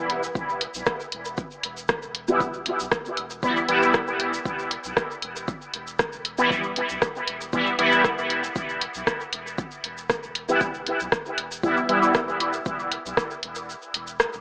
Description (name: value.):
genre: dub techno.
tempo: 117 BPM.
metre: 4/4.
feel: straight.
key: E minor.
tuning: A4 = 441 Hz.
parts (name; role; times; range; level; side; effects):
soft dub sub bass; bass; 0.0-14.4 s; E1 to B1; -46 LUFS; equal; sidechain pumping.
deep house drum kit; drums; 0.1-14.3 s; hi-hat, rim click; -25 LUFS; equal; overdrive, dub echo.
egg shaker; percussion; 0.2-14.4 s; none; -39 LUFS; equal; none.
electronic kick drum; drums; 0.4-13.3 s; none; -32 LUFS; equal; overdrive.
resonant sweep polysynth; stabs; 2.3-12.1 s; E3 to E4; -24 LUFS; equal; chorus, phaser, sidechain pumping, dub echo.
room: moderate lush hall reverb, RT60 1.7 s, digital ambience.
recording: AM radio sound.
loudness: -22 LUFS.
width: side -29 dB against mid.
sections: 0.0-14.4 A section.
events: kick drops out 13.7-14.4.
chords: 0.0 E5.